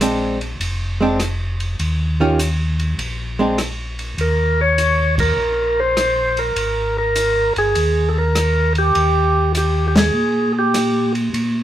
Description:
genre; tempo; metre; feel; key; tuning
soul jazz organ trio; 100 BPM; 4/4; swing 67% on 8ths; Eb mixolydian; A4 = 441 Hz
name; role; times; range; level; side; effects
archtop guitar, miked and amplified; accompaniment; 0.0-3.6 s; Eb3 to G4; -17 LUFS; right 1 dB; none
mellow tonewheel organ; bass; 0.0-11.6 s; F1 to Bb2; -20 LUFS; equal; chorus vibrato, slow rotary speaker
warm soul drum kit; drums; 0.0-11.5 s; hi-hat, kick drum, ride cymbal, rim click, snare drum; -25 LUFS; equal; none
percussive tonewheel organ; melody; 4.2-11.1 s; G4 to Db5; -17 LUFS; equal; slow rotary speaker, plate reverb
room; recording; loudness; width
moderate studio ambience, RT60 0.5 s; heard from further back in the room; -16 LUFS; side -12 dB against mid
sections
0.0-4.2 A section; 4.2-11.6 A section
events
band accent 5.1, 9.9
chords
0.0 Bb9; 1.8 Eb9; 3.0 Bb9; 4.2 Eb5; 6.6 Absus2; 9.0 Eb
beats
0.01 0.60 1.20 | 1.80 2.39 2.99 3.59 | 4.18 4.78 5.38 5.97 | 6.57 7.17 7.76 8.36 | 8.96 9.55 10.15 10.75 | 11.34

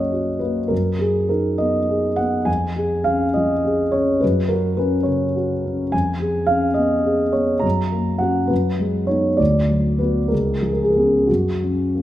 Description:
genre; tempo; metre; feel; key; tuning
classical, romantic character piece for solo piano; 59-71 BPM (dotted quarters); 6/8; rubato; F# major; A4 = 438 Hz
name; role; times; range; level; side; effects
warm concert grand piano; solo; 0.0-12.0 s; C#2 to A#5; -17 LUFS; equal; none
room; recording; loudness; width
moderate recital hall reverb, RT60 1.7 s; none; -17 LUFS; side -13 dB against mid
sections
0.0-12.0 A section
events
none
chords
0.0 F#; 0.7 G#m7/F#; 2.5 C#/E#; 4.2 F#5; 5.9 C#7/E#; 7.6 F#; 8.5 G#m7/F#; 9.4 Bm/D; 10.3 C#7; 11.3 F#5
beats
| 0.71 1.60 | 2.48 3.35 | 4.22 5.07 | 5.93 6.78 | 7.64 8.50 | 9.39 10.31 | 11.28

